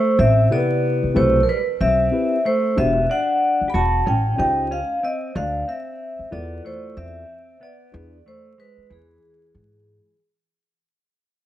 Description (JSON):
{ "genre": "hip hop", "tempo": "93 BPM", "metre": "4/4", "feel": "swing 60% on 16ths", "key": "unclear", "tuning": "A4 = 441 Hz", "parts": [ { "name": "vibraphone with soft mallets", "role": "melody", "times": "0.0-10.2 s", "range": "G#4 to B5", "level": "-21 LUFS", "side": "right 1 dB", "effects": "none" }, { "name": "mellow electric guitar", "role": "second line", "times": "0.0-10.2 s", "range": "E3 to G4", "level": "-26 LUFS", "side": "left 2 dB", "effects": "none" }, { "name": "upright bass", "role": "bass", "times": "0.2-10.0 s", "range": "E1 to G#2", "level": "-21 LUFS", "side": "equal", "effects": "none" }, { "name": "mellow tine electric piano", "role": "accompaniment", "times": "0.5-8.2 s", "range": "C3 to D5", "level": "-24 LUFS", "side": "left 2 dB", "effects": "none" } ], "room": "light reverb, studio reverb", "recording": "vinyl crackle", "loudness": "-17 LUFS", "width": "side -13 dB against mid", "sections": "0.0-10.5 A section", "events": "fade-out 0.0-10.5", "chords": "0.2 Am9; 2.8 Em9; 4.1 A7alt; 5.4 Dm9; 7.9 E7", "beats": "| 0.19 0.83 1.48 2.12 | 2.77 3.42 4.06 4.71 | 5.35 6.00 6.64 7.29 | 7.93 8.58 9.22 9.87" }